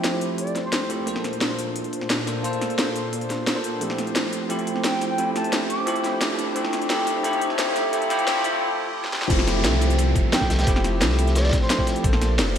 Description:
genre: liquid drum and bass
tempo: 175 BPM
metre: 4/4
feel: straight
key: F major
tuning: A4 = 440 Hz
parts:
  - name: bell-like tine electric piano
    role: accompaniment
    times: 0.0-12.6 s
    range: F3 to C5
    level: -25 LUFS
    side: equal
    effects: analog chorus, diffuse ambient delay
  - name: airy breathy pad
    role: sustained chords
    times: 0.0-12.6 s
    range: Bb2 to F5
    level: -32 LUFS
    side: equal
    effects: chorus, sidechain pumping
  - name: drum and bass drum kit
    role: drums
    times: 0.0-12.6 s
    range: crash cymbal, hi-hat, snare drum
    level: -26 LUFS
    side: equal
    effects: small room ambience
  - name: riser and downlifter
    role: sound effects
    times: 1.6-12.0 s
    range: none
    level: -33 LUFS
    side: equal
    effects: none
  - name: silver concert flute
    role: melody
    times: 0.4-0.9, 4.8-6.0, 10.3-11.9 s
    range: C5 to D6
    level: -31 LUFS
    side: right 1 dB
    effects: low-pass filter, diffuse ambient delay
  - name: warm sub bass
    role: bass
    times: 9.3-12.6 s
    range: F1 to C2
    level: -22 LUFS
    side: equal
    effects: none
  - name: crunchy breakbeat drum kit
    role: drums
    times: 9.3-12.6 s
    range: ride cymbal, snare drum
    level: -30 LUFS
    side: equal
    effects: high-pass filter on cymbals, small room ambience, high-pass filter on snare, high-pass filter on room
  - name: electronic kick drum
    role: drums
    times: 9.3-12.1 s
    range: none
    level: -22 LUFS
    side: equal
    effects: small room ambience
room: wet lush hall reverb, RT60 2.0 s, small room ambience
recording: dreamy mix soaked in reverb, high-pass filter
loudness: -20 LUFS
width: side -9 dB against mid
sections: 0.0-9.3 A section; 9.3-12.6 B section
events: build-up 0.0-9.3; filter sweep on analog synth pad 0.0-9.3; break 8.6-9.3; drum fill 9.0; drop 9.3-12.6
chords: 0.0 Fmaj9; 1.1 Bbmaj9; 3.8 Fmaj9; 6.6 Bbmaj9; 9.3 Fmaj9; 12.0 Bbmaj9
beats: 0.04 0.39 0.73 | 1.07 1.41 1.76 2.10 | 2.44 2.79 3.13 3.47 | 3.81 4.16 4.50 4.84 | 5.19 5.53 5.87 6.21 | 6.56 6.90 7.24 7.59 | 7.93 8.27 8.61 8.96 | 9.30 9.64 9.99 10.33 | 10.67 11.01 11.36 11.70 | 12.04 12.39

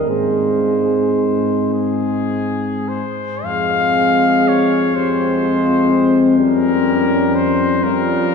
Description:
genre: classical, hymn-like piece for brass band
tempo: 33-42 BPM (dotted quarters)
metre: 6/8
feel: rubato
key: Ab major, F minor from 3.4 s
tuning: A4 = 441 Hz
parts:
  - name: warm flugelhorn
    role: melody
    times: 0.0-8.3 s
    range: Ab4 to F5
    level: -20 LUFS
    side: left 3 dB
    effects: none
  - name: dark French horn section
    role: second line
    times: 0.0-8.3 s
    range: C4 to Ab4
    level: -20 LUFS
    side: right 2 dB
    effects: none
  - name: clear trombone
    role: accompaniment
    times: 0.0-8.3 s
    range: G3 to Ab3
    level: -24 LUFS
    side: right 4 dB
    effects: none
  - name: dark euphonium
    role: accompaniment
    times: 0.0-8.3 s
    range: C4 to Db4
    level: -19 LUFS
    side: left 4 dB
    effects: none
  - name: dark tuba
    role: bass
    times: 0.0-8.3 s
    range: F2 to Ab2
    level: -22 LUFS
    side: left 1 dB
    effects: none
room: wet cathedral reverb, RT60 5.1 s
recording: recorded in a church or concert hall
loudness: -14 LUFS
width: side -5 dB against mid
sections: 0.0-3.4 A section; 3.4-8.3 B section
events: none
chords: 0.1 Ab; 3.4 Fm; 6.4 Gm7b5/F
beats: | 0.09 1.72 | 3.45 4.97 | 6.40 7.84

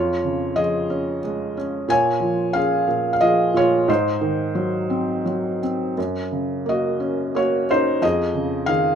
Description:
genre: classical, lyrical solo piano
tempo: 88 BPM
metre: 3/4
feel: uneven beats, rubato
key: Gb lydian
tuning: A4 = 440 Hz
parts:
  - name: felt-muted upright piano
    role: solo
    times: 0.0-8.9 s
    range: F2 to Ab5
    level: -19 LUFS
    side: equal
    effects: none
room: light reverb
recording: close, detailed microphones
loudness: -19 LUFS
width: side -8 dB against mid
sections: 0.0-8.9 A section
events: none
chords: 0.0 Dbadd9/F; 1.9 Bbm7; 3.9 Ab7; 6.0 Gb; 8.0 Dbadd9/F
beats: 0.57 1.24 | 1.90 2.55 3.22 | 3.88 4.56 5.26 | 5.97 6.67 7.36 | 8.03 8.67

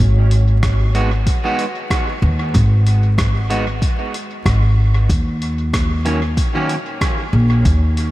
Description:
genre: ambient dub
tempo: 94 BPM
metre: 4/4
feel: swing 56% on 16ths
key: G# minor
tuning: A4 = 440 Hz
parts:
  - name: deep dark ambient pad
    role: sustained chords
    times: 0.0-8.1 s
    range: G#3 to D#5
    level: -33 LUFS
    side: equal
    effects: chorus, built-in reverb
  - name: upright bass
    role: bass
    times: 0.0-8.1 s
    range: G#1 to D#2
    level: -14 LUFS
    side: equal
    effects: none
  - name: lo-fi sampler-style drum kit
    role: drums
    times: 0.3-8.1 s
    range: hi-hat, rim click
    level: -27 LUFS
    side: equal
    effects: dub echo
  - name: electronic kick drum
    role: drums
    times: 0.6-7.8 s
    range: none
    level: -19 LUFS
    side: equal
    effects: none
  - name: electric guitar at the edge of break-up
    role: stabs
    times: 0.9-6.7 s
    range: D#3 to F#4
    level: -24 LUFS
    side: right 2 dB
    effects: wide subtle chorus, dub echo
room: light reverb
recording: vinyl crackle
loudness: -14 LUFS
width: side -17 dB against mid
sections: 0.0-8.1 A section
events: fade-in on ambient pad 0.0-8.1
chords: 0.0 G#m7; 5.1 D#m7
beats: 0.63 1.27 1.91 | 2.54 3.18 3.82 4.46 | 5.10 5.74 6.37 7.01 | 7.65

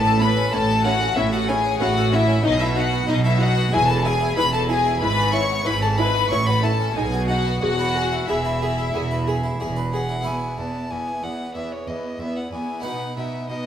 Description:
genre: classical, baroque-style concerto movement with solo episodes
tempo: 93 BPM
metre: 4/4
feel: straight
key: E major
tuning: A4 = 440 Hz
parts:
  - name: rich violin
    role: melody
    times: 0.0-13.7 s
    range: C#5 to C#6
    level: -27 LUFS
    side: left 1 dB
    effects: none
  - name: warm symphonic violin section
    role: melody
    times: 0.0-13.7 s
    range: B4 to C#6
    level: -27 LUFS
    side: left 4 dB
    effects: none
  - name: warm chamber violin section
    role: second line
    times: 0.0-13.7 s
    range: D#4 to C#5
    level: -26 LUFS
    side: left 5 dB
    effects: none
  - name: harpsichord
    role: accompaniment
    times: 0.0-13.7 s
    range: E2 to B4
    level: -29 LUFS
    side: right 1 dB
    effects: none
  - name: clear chamber cello section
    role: bass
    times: 0.0-13.6 s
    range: E2 to B2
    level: -27 LUFS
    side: right 3 dB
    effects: none
  - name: clear chamber double bass section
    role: bass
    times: 0.0-10.2 s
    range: E1 to B1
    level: -24 LUFS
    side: right 2 dB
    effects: none
  - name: warm chamber viola section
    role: accompaniment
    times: 0.2-13.7 s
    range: B3 to G#4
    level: -30 LUFS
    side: right 1 dB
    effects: none
room: wet recital hall reverb, RT60 1.4 s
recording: none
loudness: -19 LUFS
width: side -9 dB against mid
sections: 0.0-10.3 A section; 10.3-13.7 B section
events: none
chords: 0.0 A; 2.4 B7; 3.7 E; 5.0 E/G#; 6.3 F#m7/A; 7.0 B; 7.6 E; 10.3 E5; 12.8 B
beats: 0.53 1.16 1.80 | 2.44 3.08 3.73 4.37 | 5.01 5.66 6.30 6.95 | 7.61 8.28 8.94 9.60 | 10.26 10.91 11.55 12.20 | 12.85 13.49

